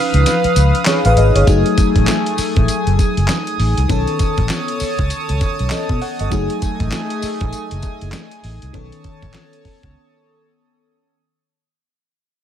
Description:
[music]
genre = R&B, new jack swing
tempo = 99 BPM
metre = 4/4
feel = swing 60% on 16ths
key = F# dorian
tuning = A4 = 441 Hz
[part]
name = FM electric piano with soft pad layer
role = accompaniment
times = 0.0-11.2 s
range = D#3 to F#5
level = -20 LUFS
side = left 2 dB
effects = chorus, phaser
[part]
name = chorused pulse-width pad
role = sustained chords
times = 0.0-11.1 s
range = A3 to D#6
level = -22 LUFS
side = equal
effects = none
[part]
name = vintage muted fingered electric bass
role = bass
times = 0.1-9.9 s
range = F#1 to B2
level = -16 LUFS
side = equal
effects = none
[part]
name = dusty soul sampler-style drum kit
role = drums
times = 0.1-9.9 s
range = handclaps, hi-hat, kick drum, snare drum, tambourine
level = -20 LUFS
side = equal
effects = none
[sound]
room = digital ambience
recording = none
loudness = -14 LUFS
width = side -10 dB against mid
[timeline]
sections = 0.0-1.5 A section; 1.5-11.2 B section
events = break 0.0-1.5, 10.0-11.2; fade-out 1.5-11.2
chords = 0.0 C#9; 1.5 F#m69; 3.9 B9; 6.3 F#m69; 8.7 B9

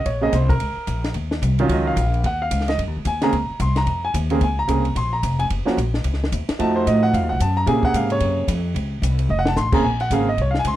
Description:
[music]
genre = jazz, small-group swing and bop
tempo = 221 BPM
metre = 4/4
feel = swing 60% on 8ths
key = Bb minor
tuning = A4 = 441 Hz
[part]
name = clear grand piano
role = accompaniment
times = 0.0-10.8 s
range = C3 to C6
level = -21 LUFS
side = right 1 dB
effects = none
[part]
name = upright bass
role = bass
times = 0.0-10.8 s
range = Eb1 to Bb2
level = -21 LUFS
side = left 1 dB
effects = none
[part]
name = compact cocktail drum kit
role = drums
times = 0.1-10.8 s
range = crash cymbal, hi-hat, kick drum, ride cymbal, snare drum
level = -27 LUFS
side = equal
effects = none
[sound]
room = little or no reverb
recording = dry, close 1970s-style studio recording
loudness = -18 LUFS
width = side -13 dB against mid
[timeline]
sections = 0.0-9.8 A section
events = drum fill 9.3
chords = 0.0 Bbmadd9; 1.2 Ebm9; 3.3 Bbm9; 5.5 Gb; 6.6 F7b9; 7.7 Bbm9; 9.3 F7; 9.8 Bbm9

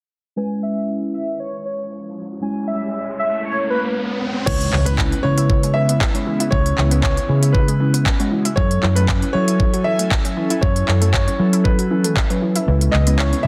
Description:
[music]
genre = dance-pop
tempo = 117 BPM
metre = 4/4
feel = straight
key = C# minor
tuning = A4 = 440 Hz
[part]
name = airy dreamy lead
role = melody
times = 0.4-3.8 s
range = B4 to G#5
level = -27 LUFS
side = equal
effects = chorus, sidechain pumping, delay
[part]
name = mellow tine electric piano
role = accompaniment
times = 0.4-13.5 s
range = F#3 to C#5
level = -27 LUFS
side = equal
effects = phaser, sidechain pumping
[part]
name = riser and impact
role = sound effects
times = 2.0-6.5 s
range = none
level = -32 LUFS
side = equal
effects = none
[part]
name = clear concert grand piano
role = melody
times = 4.5-13.5 s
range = B4 to E5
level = -26 LUFS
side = equal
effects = delay
[part]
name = airy breathy pad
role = sustained chords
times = 4.9-13.5 s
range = C#3 to G#5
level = -30 LUFS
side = equal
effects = chorus, sidechain pumping
[part]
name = analog pluck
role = arpeggios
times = 4.5-13.5 s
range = E3 to E4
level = -31 LUFS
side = equal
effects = chorus, sidechain pumping, delay
[part]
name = vintage muted fingered electric bass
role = bass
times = 4.5-13.5 s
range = C#2 to F#3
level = -20 LUFS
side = equal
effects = sidechain pumping
[part]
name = pop drum kit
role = drums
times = 4.5-13.4 s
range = crash cymbal, handclaps, hi-hat, kick drum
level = -22 LUFS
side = equal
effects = none
[sound]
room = light reverb, digital ambience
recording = dense, heavily limited modern master, low-pass filter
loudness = -18 LUFS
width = mono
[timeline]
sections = 0.4-4.5 A section; 4.5-13.5 B section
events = filter sweep 0.4-4.5; riser 2.0-4.5; impact 4.5-6.5; kick muted 12.7-13.5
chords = 0.4 C#m7; 8.6 F#m7; 12.7 C#m7

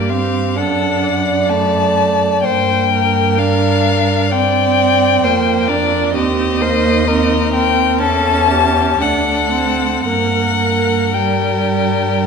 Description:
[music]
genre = classical, slow romantic movement for string quartet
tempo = 56-66 BPM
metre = 4/4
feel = rubato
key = G minor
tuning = A4 = 437 Hz
[part]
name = rich violin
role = melody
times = 0.0-12.3 s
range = D5 to A5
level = -17 LUFS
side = left 10 dB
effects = none
[part]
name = warm violin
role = second line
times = 0.0-12.3 s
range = G4 to D5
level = -19 LUFS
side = equal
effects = none
[part]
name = rich viola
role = accompaniment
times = 0.0-12.3 s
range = G3 to D4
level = -18 LUFS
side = right 5 dB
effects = none
[part]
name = rich cello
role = bass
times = 0.0-12.3 s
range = D2 to G2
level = -19 LUFS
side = right 3 dB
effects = none
[sound]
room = moderate scoring stage reverb, RT60 1.8 s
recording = minimal, uncompressed stereo recording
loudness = -12 LUFS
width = side -6 dB against mid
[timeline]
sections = 0.0-12.3 A section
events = none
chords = 0.0 Gm; 0.6 D/F#; 2.4 Gm; 6.2 Cm/Eb; 8.0 A7/E; 9.0 D7; 10.1 Gm

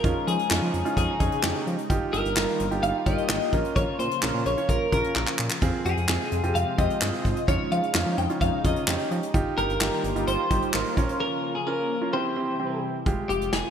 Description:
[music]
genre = synth-pop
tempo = 129 BPM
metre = 4/4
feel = straight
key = unclear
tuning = A4 = 440 Hz
[part]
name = twelve-string electric guitar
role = melody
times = 0.0-13.7 s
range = G4 to G5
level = -28 LUFS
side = left 2 dB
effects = wide subtle chorus
[part]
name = warm grand piano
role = accompaniment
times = 0.0-13.6 s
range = Ab3 to Db5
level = -29 LUFS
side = right 3 dB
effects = none
[part]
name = phased analog pad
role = sustained chords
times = 0.0-13.7 s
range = C3 to G4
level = -33 LUFS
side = left 1 dB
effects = phaser, chorus
[part]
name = smooth synth bass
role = bass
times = 0.0-13.6 s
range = F1 to F3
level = -29 LUFS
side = equal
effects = none
[part]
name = soft brush drum kit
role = drums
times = 0.0-13.6 s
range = handclaps, hi-hat, kick drum, snare drum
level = -27 LUFS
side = equal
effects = gated reverb
[sound]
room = moderate lush hall reverb, RT60 2.0 s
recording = bright 1980s-style digital production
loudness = -22 LUFS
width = side -8 dB against mid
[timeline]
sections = 0.0-13.1 A section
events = drum fill 5.2-5.6; break 11.2-13.1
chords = 0.0 Dbadd9/F; 1.9 Ebadd9/G; 3.5 Bbm; 5.6 Fm; 7.5 Dbadd9/F; 9.3 Ebadd9/G; 11.0 Bbm; 12.1 C; 13.1 Fmadd9

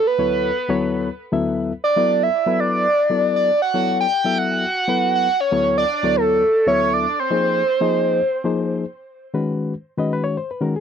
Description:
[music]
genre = jazz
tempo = 236 BPM (eighths)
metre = 7/8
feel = straight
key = unclear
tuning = A4 = 442 Hz
[part]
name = overdriven synth lead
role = melody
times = 0.0-8.5 s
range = A4 to G5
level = -18 LUFS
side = right 2 dB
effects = phaser, tape echo
[part]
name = barky reed electric piano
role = accompaniment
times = 0.2-10.8 s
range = D2 to E5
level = -21 LUFS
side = left 4 dB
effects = none
[sound]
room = light reverb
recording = dry, close 1970s-style studio recording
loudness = -17 LUFS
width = side -8 dB against mid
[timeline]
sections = 0.0-9.0 A section; 9.0-10.8 B section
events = none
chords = 0.0 Bm9/D; 1.8 E5; 3.6 F#m7; 5.4 D6; 7.2 G#69; 9.0 C#9sus4

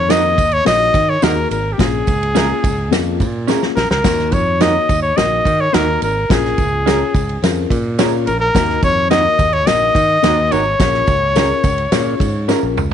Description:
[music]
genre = uptempo 1960s-style soul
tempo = 107 BPM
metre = 4/4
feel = straight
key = Eb minor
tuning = A4 = 440 Hz
[part]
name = clear trumpet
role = melody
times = 0.0-12.5 s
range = G4 to Eb5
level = -16 LUFS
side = left 1 dB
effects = none
[part]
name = dark upright piano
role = accompaniment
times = 0.0-12.8 s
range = Bb2 to Db5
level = -21 LUFS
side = left 13 dB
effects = none
[part]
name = modern bright fingered electric bass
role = bass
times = 0.0-12.9 s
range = Ab1 to Eb3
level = -20 LUFS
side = right 1 dB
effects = none
[part]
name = electric guitar through a small old amp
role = stabs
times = 0.1-12.6 s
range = Db4 to Bb4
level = -21 LUFS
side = right 13 dB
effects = none
[part]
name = natural country drum kit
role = drums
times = 0.1-12.9 s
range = kick drum, ride cymbal, snare drum, splash cymbal, toms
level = -19 LUFS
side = right 1 dB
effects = none
[part]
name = tambourine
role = percussion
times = 0.1-12.9 s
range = none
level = -35 LUFS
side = right 16 dB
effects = none
[sound]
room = light reverb, small room ambience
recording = 1960s-style stereo with parts hard left and right, nothing above 10.9 kHz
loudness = -13 LUFS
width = side -9 dB against mid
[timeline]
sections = 0.0-12.9 A section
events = drum fill 3.5-4.0, 12.5-12.9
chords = 0.0 Ebm; 1.8 Bbm7; 4.0 Ebm; 6.3 Bbm7; 8.6 Ebm; 10.8 Bbm7

